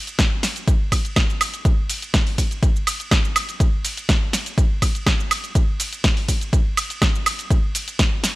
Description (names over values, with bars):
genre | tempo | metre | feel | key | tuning
house | 123 BPM | 4/4 | straight | none | none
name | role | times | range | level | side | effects
house drum kit | drums | 0.1-8.3 s | cabasa, hi-hat, ride cymbal, snare drum, woodblock | -22 LUFS | right 1 dB | small room ambience
electronic kick drum | drums | 0.2-8.1 s | none | -19 LUFS | equal | small room ambience
room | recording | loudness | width
digital ambience | none | -18 LUFS | side -19 dB against mid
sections
0.0-8.4 A section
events
none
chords
none